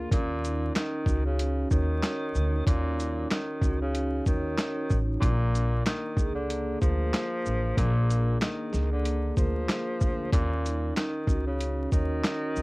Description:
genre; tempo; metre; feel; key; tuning
hip hop, boom-bap hip-hop; 94 BPM; 4/4; swing 58% on 16ths; Eb minor; A4 = 439 Hz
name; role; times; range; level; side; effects
breathy tenor saxophone; melody; 0.0-12.6 s; Bb2 to F3; -32 LUFS; equal; high-pass filter, low-pass filter, cassette tape
vibraphone with soft mallets; accompaniment; 0.0-12.6 s; Bb3 to Db5; -33 LUFS; right 1 dB; high-pass filter, low-pass filter, cassette tape
upright bass; bass; 0.0-12.6 s; A1 to Eb2; -28 LUFS; equal; none
dusty soul sampler-style drum kit; drums; 0.1-12.6 s; handclaps, hi-hat, kick drum, shaker, snare drum; -27 LUFS; equal; cassette tape
room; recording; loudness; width
little or no reverb; home recording on cassette, vinyl crackle; -25 LUFS; side -23 dB against mid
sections
0.1-12.6 A section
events
none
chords
0.1 Ebm7; 5.2 Bb7; 10.3 Ebm7

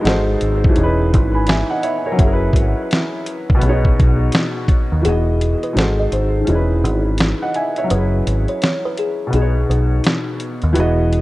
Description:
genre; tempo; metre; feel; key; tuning
lo-fi hip hop; 84 BPM; 4/4; swing 63% on 16ths; B major; A4 = 439 Hz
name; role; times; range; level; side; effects
felt-muted upright piano; accompaniment; 0.0-11.2 s; B2 to B5; -19 LUFS; equal; cassette tape, low-pass filter, dub echo
deep dub picked electric bass; bass; 0.1-11.2 s; E1 to D#2; -17 LUFS; equal; none
dusty soul sampler-style drum kit; drums; 0.1-11.2 s; hi-hat, kick drum, snare drum; -17 LUFS; equal; none
kalimba; melody; 5.1-10.7 s; G#4 to D#5; -25 LUFS; left 2 dB; low-pass filter, dub echo
room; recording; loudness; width
small room ambience; echo-heavy mix; -14 LUFS; side -18 dB against mid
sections
0.0-5.0 A section; 5.0-11.2 B section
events
kick muted 5.0-11.2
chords
0.0 G#7b9; 0.8 C#m7/E; 2.2 F#9sus4; 3.6 B69; 5.0 Emaj9; 5.8 G#7b9; 6.5 C#m7/E; 7.9 F#9sus4; 9.3 B69

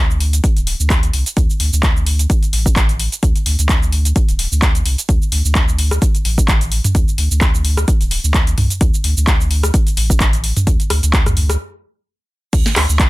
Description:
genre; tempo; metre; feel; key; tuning
acid house; 129 BPM; 4/4; swing 55% on 16ths; unclear; A4 = 440 Hz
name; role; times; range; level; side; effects
warm sub bass; bass; 0.0-13.1 s; D1 to D2; -17 LUFS; equal; sidechain pumping
booming analog drum machine; drums; 0.1-13.1 s; crash cymbal, handclaps, hi-hat, rim click, shaker, snare drum, toms; -19 LUFS; equal; none
electronic kick drum; drums; 0.4-13.1 s; none; -15 LUFS; equal; none
room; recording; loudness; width
little or no reverb; dense, heavily limited modern master; -13 LUFS; side -19 dB against mid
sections
0.0-12.5 A section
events
stop 11.6-12.5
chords
none

